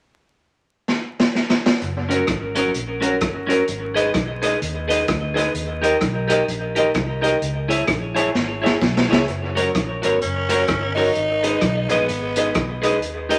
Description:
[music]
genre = ska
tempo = 128 BPM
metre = 4/4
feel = swing 61% on 8ths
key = G# minor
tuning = A4 = 440 Hz
[part]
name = crunchy breakbeat drum kit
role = drums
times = 0.9-13.4 s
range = hi-hat, kick drum, rim click, snare drum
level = -25 LUFS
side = equal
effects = analog delay
[part]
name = vintage muted fingered electric bass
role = bass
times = 1.8-13.4 s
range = F#1 to D#2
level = -30 LUFS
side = equal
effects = none
[part]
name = clean electric guitar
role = accompaniment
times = 2.1-13.4 s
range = C#4 to D#5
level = -24 LUFS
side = equal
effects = analog delay
[part]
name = warm upright piano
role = stabs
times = 2.1-13.4 s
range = C#4 to E5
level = -27 LUFS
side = equal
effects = none
[part]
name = growling tenor saxophone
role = melody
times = 10.0-12.8 s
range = B3 to D#4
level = -26 LUFS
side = equal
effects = none
[sound]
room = wet studio reverb, RT60 0.8 s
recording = vinyl crackle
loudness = -20 LUFS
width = mono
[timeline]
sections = 0.0-1.8 A section; 1.8-9.3 B section; 9.3-13.4 C section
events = drum fill 0.9-1.8, 8.3-9.3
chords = 0.0 N.C.; 1.8 F#; 3.7 G#m; 5.5 D#; 7.4 C#m; 9.3 F#; 11.1 G#m

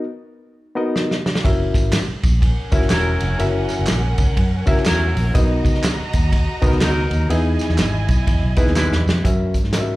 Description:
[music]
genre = uptempo 1960s-style soul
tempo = 123 BPM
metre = 4/4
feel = swing 61% on 8ths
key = F# mixolydian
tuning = A4 = 440 Hz
[part]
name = barky reed electric piano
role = accompaniment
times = 0.0-10.0 s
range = B3 to E5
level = -23 LUFS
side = left 2 dB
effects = overdrive, slapback echo
[part]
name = warm soul drum kit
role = drums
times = 1.0-9.9 s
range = hi-hat, kick drum, ride cymbal, snare drum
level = -19 LUFS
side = equal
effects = none
[part]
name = vintage muted fingered electric bass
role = bass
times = 1.4-10.0 s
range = E1 to G#2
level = -20 LUFS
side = equal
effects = none
[part]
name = tambourine and handclaps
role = percussion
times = 1.5-9.9 s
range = none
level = -33 LUFS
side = right 2 dB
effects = none
[part]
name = warm studio violin section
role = second line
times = 2.4-9.2 s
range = C#4 to A#5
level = -29 LUFS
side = right 1 dB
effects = slapback echo
[part]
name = clear horn section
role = second line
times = 2.7-9.2 s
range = F#3 to B4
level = -25 LUFS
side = right 1 dB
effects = none
[sound]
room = studio ambience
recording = live gig heard through the venue's PA, club reverb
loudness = -16 LUFS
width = side -18 dB against mid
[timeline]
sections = 0.0-9.2 A section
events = drum fill 1.0-1.4, 8.8-9.2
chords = 0.0 Bmaj7; 1.4 F#7; 5.3 Bmaj7; 7.3 Emaj7; 9.2 F#7

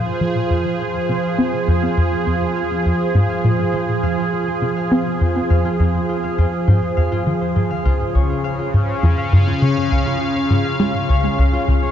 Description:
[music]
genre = ambient, sequencer-driven space music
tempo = 102 BPM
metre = 4/4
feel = straight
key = F minor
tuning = A4 = 437 Hz
[part]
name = sweeping resonant pad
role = sustained chords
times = 0.0-11.9 s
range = Db3 to F5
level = -20 LUFS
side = right 1 dB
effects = chorus
[part]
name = concert harp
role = arpeggios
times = 0.0-11.9 s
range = F4 to F5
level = -28 LUFS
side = left 4 dB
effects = auto-pan, analog delay
[part]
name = plucky analog bass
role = riff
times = 0.0-11.9 s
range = Db2 to C4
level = -18 LUFS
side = equal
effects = wide subtle chorus, analog delay
[sound]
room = wet huge ambient reverb, RT60 8.0 s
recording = dark, warm production, nothing above 7.7 kHz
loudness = -16 LUFS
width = side -10 dB against mid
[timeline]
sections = 0.0-11.9 A section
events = fade-in on harp 0.0-11.9; filter sweep on analog synth bass 0.0-11.9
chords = 0.0 Fm; 7.9 Db

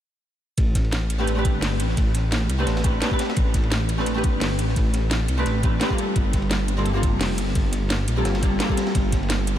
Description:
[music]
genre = liquid drum and bass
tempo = 172 BPM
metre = 4/4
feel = swing 54% on 16ths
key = A minor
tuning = A4 = 440 Hz
[part]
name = dark detuned saw bass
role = bass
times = 0.6-9.6 s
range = F1 to C2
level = -24 LUFS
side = equal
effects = none
[part]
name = crunchy breakbeat drum kit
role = drums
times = 0.6-9.6 s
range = hi-hat, ride cymbal, snare drum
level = -34 LUFS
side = equal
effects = high-pass filter on cymbals, high-pass filter on hats, high-pass filter on snare, high-pass filter on room
[part]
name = electronic kick drum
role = drums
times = 0.6-9.2 s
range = none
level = -22 LUFS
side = equal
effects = none
[part]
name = garage drum kit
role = drums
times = 0.6-9.5 s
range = hi-hat, snare drum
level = -29 LUFS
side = right 1 dB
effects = none
[part]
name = archtop guitar, miked and amplified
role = accompaniment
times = 1.2-9.6 s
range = G3 to B4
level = -25 LUFS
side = equal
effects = analog chorus, tape echo
[sound]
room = light reverb, small room reverb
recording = none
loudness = -20 LUFS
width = side -11 dB against mid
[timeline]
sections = 0.6-9.6 A section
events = none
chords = 0.6 Am11; 6.0 Gm11

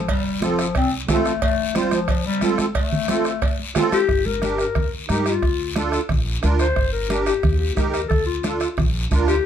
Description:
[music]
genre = latin, cumbia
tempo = 180 BPM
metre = 4/4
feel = straight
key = unclear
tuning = A4 = 439 Hz
[part]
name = growling clarinet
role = second line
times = 0.0-9.5 s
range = F3 to C5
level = -23 LUFS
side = left 6 dB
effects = none
[part]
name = upright bass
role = bass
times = 0.0-9.4 s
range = F1 to G2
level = -25 LUFS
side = equal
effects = none
[part]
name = bombo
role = percussion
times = 0.1-9.4 s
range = none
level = -25 LUFS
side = right 2 dB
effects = none
[part]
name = congas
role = percussion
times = 0.1-9.3 s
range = none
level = -26 LUFS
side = equal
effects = none
[part]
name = cowbell and timbales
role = percussion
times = 0.1-3.9 s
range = none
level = -30 LUFS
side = right 4 dB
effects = none
[part]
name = guiro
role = percussion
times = 0.1-9.4 s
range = none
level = -32 LUFS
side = left 5 dB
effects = none
[part]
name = musette accordion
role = accompaniment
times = 0.4-9.4 s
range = C4 to C5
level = -23 LUFS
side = right 5 dB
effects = none
[sound]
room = moderate studio reverb, RT60 0.6 s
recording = none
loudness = -18 LUFS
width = side -9 dB against mid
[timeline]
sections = 0.0-4.1 A section; 4.1-9.5 B section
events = clarinet solo 0.0-4.1, 4.1-9.5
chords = 0.0 F; 4.1 Gm; 4.8 Eb; 5.4 Dm; 6.1 Bb; 6.8 Gm; 7.4 Eb; 8.1 Dm; 8.8 Bb

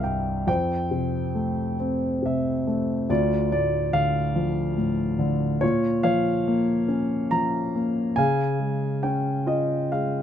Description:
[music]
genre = classical, lyrical solo piano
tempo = 70 BPM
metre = 3/4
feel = rubato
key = F major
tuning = A4 = 438 Hz
[part]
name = dark grand piano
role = solo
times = 0.0-10.2 s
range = C2 to Bb5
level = -22 LUFS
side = equal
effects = none
[sound]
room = light reverb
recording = close, detailed microphones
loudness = -22 LUFS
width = side -9 dB against mid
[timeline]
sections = 0.5-10.2 A section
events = grand piano fill 0.0-0.5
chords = 0.5 Fadd9; 3.1 Dm; 5.6 Bbm; 8.2 Db

